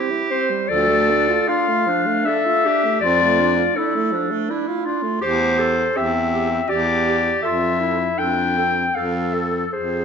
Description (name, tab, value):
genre	classical, lyrical piece for single-reed quartet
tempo	80 BPM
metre	3/4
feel	rubato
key	unclear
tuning	A4 = 441 Hz
part	clear alto saxophone	second line	0.0-10.0 s	F3 to A4	-26 LUFS	right 8 dB	none
part	warm clarinet	accompaniment	0.0-10.0 s	C4 to A4	-23 LUFS	left 1 dB	none
part	clear clarinet	melody	0.3-10.0 s	A4 to G5	-20 LUFS	left 4 dB	none
part	clear baritone saxophone	bass	0.7-10.0 s	D2 to F2	-24 LUFS	right 2 dB	none
room	moderate recital hall reverb, RT60 1.5 s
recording	nothing above 7.9 kHz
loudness	-17 LUFS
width	side -6 dB against mid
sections	0.0-10.0 A section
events	none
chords	0.0 C; 0.7 Dm; 3.0 Dm/F; 5.2 C/E; 7.4 Fmaj7